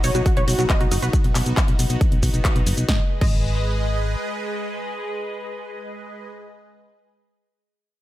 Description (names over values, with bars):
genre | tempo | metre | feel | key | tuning
uplifting trance | 137 BPM | 4/4 | straight | G# minor | A4 = 440 Hz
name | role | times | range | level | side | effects
wide unison pluck | melody | 0.0-6.6 s | F#4 to D#5 | -26 LUFS | equal | cassette tape, sidechain pumping, digital delay
supersaw pad | sustained chords | 0.0-6.3 s | G#3 to D#5 | -29 LUFS | equal | phaser, sidechain pumping
wide unison pluck | arpeggios | 0.0-3.3 s | F#3 to B4 | -33 LUFS | right 4 dB | sidechain pumping, digital delay
solid FM bass | bass | 0.0-4.2 s | F#1 to B1 | -23 LUFS | equal | sidechain pumping
big-room dance drum kit | drums | 0.0-3.3 s | crash cymbal, handclaps, hi-hat, snare drum | -28 LUFS | equal | sidechain pumping on hats, sidechain pumping on cymbals
maracas | percussion | 0.0-2.9 s | none | -31 LUFS | left 1 dB | none
sub drop | sound effects | 0.2-1.1 s | none | -35 LUFS | left 1 dB | none
electronic kick drum | drums | 0.3-3.3 s | none | -20 LUFS | equal | none
room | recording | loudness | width
little or no reverb | none | -19 LUFS | side -15 dB against mid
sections
0.0-2.9 A section; 2.9-6.4 B section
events
impact 0.0-1.1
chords
0.0 B; 2.9 G#m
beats
0.26 0.70 | 1.13 1.57 2.01 2.45 | 2.89 3.32 3.76 4.20 | 4.64 5.08 5.51 5.95